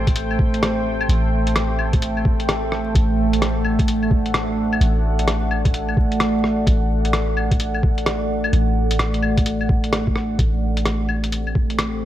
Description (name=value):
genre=future garage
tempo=129 BPM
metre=4/4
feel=swing 63% on 16ths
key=unclear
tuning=A4 = 440 Hz
part: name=deep dark ambient pad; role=sustained chords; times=0.0-12.1 s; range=A3 to G5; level=-22 LUFS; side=equal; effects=chorus, built-in reverb, vintage 12-bit sampler grit, sidechain pumping
part: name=soft 808-style bass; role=bass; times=0.0-12.1 s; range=A1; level=-22 LUFS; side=equal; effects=sidechain pumping
part: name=electronic kick drum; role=drums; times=0.1-11.7 s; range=none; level=-18 LUFS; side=equal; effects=none
part: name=lo-fi sampler-style drum kit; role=drums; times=0.1-11.9 s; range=claves, hi-hat, rim click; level=-24 LUFS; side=left 1 dB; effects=none
room=moderate lush hall reverb, RT60 1.6 s, digital ambience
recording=vinyl crackle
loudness=-17 LUFS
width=side -13 dB against mid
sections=0.0-10.4 A section; 10.4-12.1 B section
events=none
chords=0.0 Am7; 2.9 D/A; 10.4 Am7